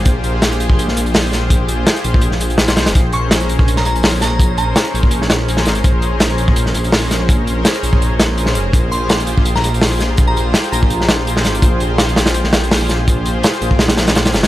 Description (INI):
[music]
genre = drum and bass, jungle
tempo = 166 BPM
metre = 4/4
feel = straight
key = Bb dorian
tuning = A4 = 439 Hz
[part]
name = lush unison pad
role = sustained chords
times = 0.0-14.5 s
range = Db4 to C5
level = -21 LUFS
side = left 1 dB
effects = chorus
[part]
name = dark detuned saw bass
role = bass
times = 0.0-14.5 s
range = F1 to C2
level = -18 LUFS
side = equal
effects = tube saturation
[part]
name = crunchy breakbeat drum kit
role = drums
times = 0.1-14.5 s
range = hi-hat, kick drum, snare drum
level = -14 LUFS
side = equal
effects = none
[part]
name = glassy synth bell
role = melody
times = 3.1-4.9, 8.9-11.1 s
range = Bb5 to Db6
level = -24 LUFS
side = right 1 dB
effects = chorus, phaser, dub echo
[sound]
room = small room ambience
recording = lossy compression artefacts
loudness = -12 LUFS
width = side -15 dB against mid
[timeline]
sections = 0.0-14.5 A section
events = none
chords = 0.0 Fmadd9; 3.0 Bbm9; 8.7 Fmadd9